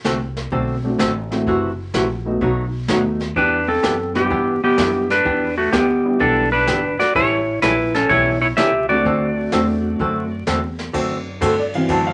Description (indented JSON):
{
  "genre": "country, western swing",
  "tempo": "127 BPM",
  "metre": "4/4",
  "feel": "swing 68% on 8ths",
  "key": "D mixolydian",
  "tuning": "A4 = 440 Hz",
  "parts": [
    { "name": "archtop guitar, miked and amplified", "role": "accompaniment", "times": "0.0-12.1 s", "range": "B2 to A4", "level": "-24 LUFS", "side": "equal", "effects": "none" },
    { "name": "upright bass", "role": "bass", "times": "0.0-12.1 s", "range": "F#1 to G2", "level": "-30 LUFS", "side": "equal", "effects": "none" },
    { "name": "jazz brush drum kit", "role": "drums", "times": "0.0-12.0 s", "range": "brushed snare drum, hi-hat, kick drum, ride cymbal, snare drum", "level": "-29 LUFS", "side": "equal", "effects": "none" },
    { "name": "warm upright piano", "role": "accompaniment", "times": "0.8-12.1 s", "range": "E3 to A5", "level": "-24 LUFS", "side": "equal", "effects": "none" },
    { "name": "clean lap steel guitar", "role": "melody", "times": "3.4-10.4 s", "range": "A3 to E5", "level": "-19 LUFS", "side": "equal", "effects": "none" }
  ],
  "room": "wet club reverb, RT60 0.5 s",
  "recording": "vinyl crackle, nothing above 10.7 kHz",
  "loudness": "-19 LUFS",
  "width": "mono",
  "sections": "0.0-10.9 A section; 10.9-12.1 B section",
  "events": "upright piano solo 10.9-12.1",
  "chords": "0.0 D7; 1.5 F#m7b5; 2.4 B7; 3.4 Em7; 7.2 A7; 9.0 D7",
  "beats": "0.05 0.52 0.99 | 1.47 1.94 2.41 2.89 | 3.36 3.83 4.31 4.78 | 5.26 5.73 6.20 6.68 | 7.15 7.63 8.10 8.57 | 9.05 9.52 10.00 10.47 | 10.95 11.42 11.89"
}